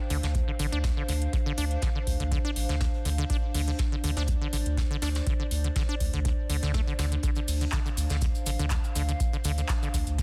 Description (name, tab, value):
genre	acid house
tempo	122 BPM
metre	4/4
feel	swing 53% on 16ths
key	D minor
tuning	A4 = 440 Hz
part	warbly tape-like pad	texture	0.0-10.2 s	D4 to F5	-40 LUFS	equal	chorus, built-in reverb, sidechain pumping
part	acid bass, saw	riff	0.1-10.2 s	D3 to D4	-38 LUFS	equal	sidechain pumping, delay
part	warm sub bass	bass	0.1-10.2 s	A1 to D2	-31 LUFS	equal	sidechain pumping
part	electro analog drum machine	drums	0.1-10.2 s	handclaps, hi-hat	-39 LUFS	equal	none
part	vintage brush drum kit	drums	0.1-10.2 s	hi-hat, snare drum	-45 LUFS	equal	high-pass filter on hats, soft clipping on snare, high-pass filter on snare, high-pass filter on room
part	electronic kick drum	drums	0.3-10.2 s	none	-31 LUFS	equal	none
part	cabasa	percussion	7.2-10.2 s	none	-42 LUFS	equal	none
room	small room reverb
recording	dense, heavily limited modern master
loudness	-28 LUFS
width	mono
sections	0.0-10.2 A section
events	none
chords	0.0 Dm7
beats	0.35 0.84 | 1.33 1.82 2.32 2.81 | 3.30 3.79 4.28 4.78 | 5.27 5.76 6.25 6.74 | 7.23 7.73 8.22 8.71 | 9.20 9.69 10.19